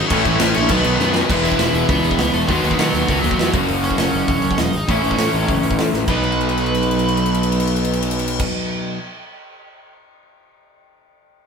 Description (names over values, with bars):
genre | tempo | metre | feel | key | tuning
punk rock | 200 BPM | 4/4 | straight | B mixolydian | A4 = 440 Hz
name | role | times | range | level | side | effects
overdriven electric guitar | melody | 0.0-8.4 s | F#3 to E5 | -24 LUFS | right 1 dB | none
high-gain distorted guitar | riff | 0.0-3.5 s | E2 to B3 | -21 LUFS | left 1 dB | distortion
fuzz picked electric bass | bass | 0.0-8.4 s | E1 to D#3 | -22 LUFS | equal | overdrive
overdriven electric guitar | riff | 0.1-9.0 s | A2 to F#4 | -20 LUFS | equal | none
big rock drum kit | drums | 0.1-9.9 s | crash cymbal, hi-hat, kick drum, ride cymbal, snare drum | -23 LUFS | equal | none
room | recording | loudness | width
moderate studio reverb, RT60 0.7 s | band playing live in one room | -15 LUFS | side -6 dB against mid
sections
0.0-1.3 A section; 1.3-6.1 B section; 6.1-8.5 C section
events
drum fill 1.0, 5.9, 6.2-8.4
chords
0.1 A; 0.7 B; 1.3 E; 2.5 B/D#; 3.5 F#; 4.9 A; 6.1 B